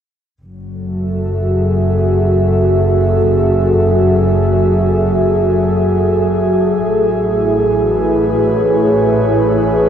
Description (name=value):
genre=ambient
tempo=free time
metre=none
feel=none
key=F# minor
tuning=A4 = 441 Hz
part: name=airy breathy pad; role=sustained chords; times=0.7-9.9 s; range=F#3 to E5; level=-13 LUFS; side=equal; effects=chorus
part: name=dark studio double bass section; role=bass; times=0.4-9.9 s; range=F#1 to A1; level=-17 LUFS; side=equal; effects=none
room=wet cathedral reverb, RT60 7.0 s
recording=dark, warm production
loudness=-11 LUFS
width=side -8 dB against mid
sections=0.4-9.9 A section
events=filter sweep on analog synth pad 0.4-9.9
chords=0.4 F#m7; 6.8 Amaj7